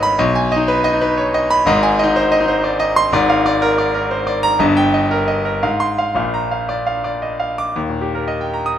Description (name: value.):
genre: classical, virtuoso piano study.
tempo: 110-125 BPM.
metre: 3/4.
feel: rubato.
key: Eb major.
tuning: A4 = 440 Hz.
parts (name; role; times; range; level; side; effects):
bright concert grand piano; solo; 0.0-8.8 s; G1 to Eb6; -14 LUFS; equal; none.
room: moderate large studio reverb, RT60 0.9 s.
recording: none.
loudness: -14 LUFS.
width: side -10 dB against mid.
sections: 0.0-7.8 A section; 7.8-8.8 B section.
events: none.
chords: 0.2 Abm/Cb; 1.7 Ab; 3.1 Bb7/Ab; 4.6 Eb/G; 5.6 Fm/Ab; 6.2 Bb; 7.8 Eb.